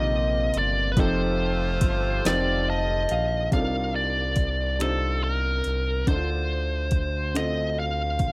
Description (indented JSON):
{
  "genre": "slow six-eight R&B",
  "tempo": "47 BPM (dotted quarters)",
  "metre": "6/8",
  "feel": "straight",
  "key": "C dorian",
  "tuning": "A4 = 440 Hz",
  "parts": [
    { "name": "biting lead guitar", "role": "melody", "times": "0.0-8.3 s", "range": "A4 to F5", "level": "-30 LUFS", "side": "equal", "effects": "overdrive" },
    { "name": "warm baby grand piano", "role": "accompaniment", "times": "0.0-8.3 s", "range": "C3 to A5", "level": "-32 LUFS", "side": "equal", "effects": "none" },
    { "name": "warm analog pad", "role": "sustained chords", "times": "0.0-3.5 s", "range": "C3 to A4", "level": "-40 LUFS", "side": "equal", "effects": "chorus" },
    { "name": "clear horn section", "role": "stabs", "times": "0.0-3.1 s", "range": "C3 to G4", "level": "-38 LUFS", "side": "equal", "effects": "none" },
    { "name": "smooth synth bass", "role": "bass", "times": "0.0-8.3 s", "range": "F1 to D2", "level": "-30 LUFS", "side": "equal", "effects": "none" },
    { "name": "smooth R&B drum kit", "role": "drums", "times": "0.5-8.3 s", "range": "finger snaps, hi-hat, kick drum, snare drum", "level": "-27 LUFS", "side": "equal", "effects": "none" }
  ],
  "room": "digital ambience",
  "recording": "none",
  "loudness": "-25 LUFS",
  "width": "mono",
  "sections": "0.0-3.5 A section; 3.5-8.3 B section",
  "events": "kick muted 2.2-3.5; grand piano fill 2.2-3.5",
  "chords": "0.0 Cm11; 1.0 F9; 3.5 Cm11; 6.1 Dm7"
}